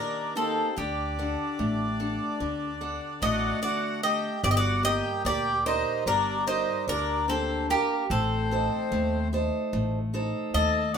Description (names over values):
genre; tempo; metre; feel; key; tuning
greek folk, Greek bouzouki band; 147 BPM (eighths); 9/8; straight; G harmonic minor; A4 = 440 Hz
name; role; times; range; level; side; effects
Greek bouzouki; melody; 0.0-11.0 s; G4 to Eb5; -28 LUFS; left 1 dB; none
accordion; second line; 0.0-11.0 s; Bb3 to A4; -31 LUFS; right 1 dB; none
picked acoustic archtop guitar; accompaniment; 0.0-11.0 s; Bb2 to F#5; -30 LUFS; equal; none
upright bass; bass; 0.8-11.0 s; G1 to Eb2; -31 LUFS; left 1 dB; none
room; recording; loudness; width
moderate studio reverb, RT60 0.6 s; minimal, uncompressed stereo recording; -25 LUFS; side -7 dB against mid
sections
0.0-4.4 A section; 4.4-11.0 B section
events
none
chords
0.0 Eb; 0.8 D; 4.4 Gm; 8.1 Adim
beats
0.36 | 0.77 1.18 1.59 1.99 2.40 2.81 3.22 3.62 4.03 | 4.44 4.84 5.25 5.66 6.07 6.47 6.88 7.29 7.69 | 8.10 8.51 8.91 9.32 9.73 10.13 10.54 10.95